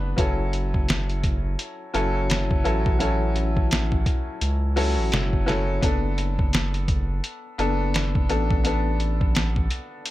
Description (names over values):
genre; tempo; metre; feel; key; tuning
trip hop; 85 BPM; 4/4; swing 60% on 16ths; F# minor; A4 = 440 Hz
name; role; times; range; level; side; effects
bright upright piano; accompaniment; 0.0-10.1 s; F#3 to B4; -27 LUFS; left 2 dB; harmonic tremolo, vintage 12-bit sampler grit, tape echo
round analog bass; bass; 0.0-9.7 s; F#1 to C#2; -25 LUFS; equal; none
trip hop sampler-style drum kit; drums; 0.2-10.1 s; hi-hat, kick drum, snare drum; -24 LUFS; equal; small room ambience
room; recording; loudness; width
little or no reverb; none; -21 LUFS; side -16 dB against mid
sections
0.0-10.1 A section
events
none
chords
0.2 F#m7; 5.8 Bm7/F#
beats
| 0.18 0.88 1.59 2.29 | 3.00 3.71 4.41 5.12 | 5.82 6.53 7.24 7.94 | 8.65 9.35 10.06